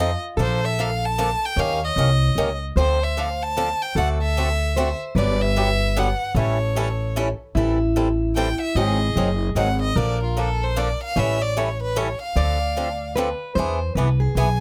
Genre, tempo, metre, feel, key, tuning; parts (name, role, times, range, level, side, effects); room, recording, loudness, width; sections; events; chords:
acoustic string swing (jazz manouche); 150 BPM; 3/4; swing 61% on 8ths; D minor; A4 = 440 Hz
clear violin; melody; 0.0-14.6 s; F4 to A5; -28 LUFS; equal
picked plugged-in steel-string acoustic guitar; second line; 0.0-14.6 s; E4 to D5; -30 LUFS; equal
picked swing-style acoustic guitar; accompaniment; 0.0-14.5 s; D3 to Bb4; -28 LUFS; equal
upright bass; bass; 0.0-14.6 s; F#1 to F2; -25 LUFS; equal
little or no reverb; close, detailed microphones; -22 LUFS; mono
0.0-7.6 A section; 7.6-14.6 B section
violin solo 7.6-14.6
0.4 Bbmaj7; 1.6 Eb7; 2.8 Dm7; 4.0 D7; 5.2 Gmaj7; 6.4 A7; 7.6 Am7; 8.8 G#7; 10.0 Bbmaj7; 11.2 A7; 12.4 Dm7; 13.6 E7b13